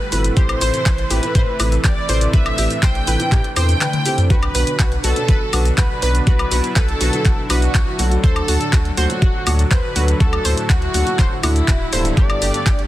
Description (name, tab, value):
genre	progressive house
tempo	122 BPM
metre	4/4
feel	straight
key	unclear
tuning	A4 = 440 Hz
part	wide unison lead	melody	0.0-12.8 s	E4 to G5	-24 LUFS	equal	sidechain pumping, dub echo
part	rich studio violin section	second line	0.0-12.8 s	E4 to G5	-30 LUFS	left 1 dB	sidechain pumping
part	warm analog pad	sustained chords	0.0-12.9 s	A2 to G4	-27 LUFS	right 1 dB	chorus, sidechain pumping
part	analog pluck	arpeggios	0.1-12.7 s	F#4 to C5	-27 LUFS	right 1 dB	chorus, sidechain pumping, dub echo
part	dark concert grand piano	stabs	0.1-12.6 s	G2 to C5	-26 LUFS	left 1 dB	sidechain pumping
part	saturated sub bass	bass	0.1-12.8 s	D1 to A2	-20 LUFS	equal	sidechain pumping
part	pop drum kit	drums	0.1-12.9 s	handclaps, hi-hat, shaker, toms, woodblock	-23 LUFS	left 1 dB	overdrive
part	electronic kick drum	drums	0.4-12.8 s	none	-16 LUFS	equal	overdrive
room	little or no reverb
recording	dense, heavily limited modern master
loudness	-14 LUFS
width	side -15 dB against mid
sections	0.0-12.9 A section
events	drum fill 3.8-4.3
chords	0.4 Amadd9; 4.3 Bm; 8.2 D; 12.2 Gadd9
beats	| 0.37 0.86 1.35 1.84 | 2.33 2.83 3.32 3.81 | 4.30 4.79 5.29 5.78 | 6.27 6.76 7.25 7.75 | 8.24 8.73 9.22 9.71 | 10.20 10.70 11.19 11.68 | 12.17 12.66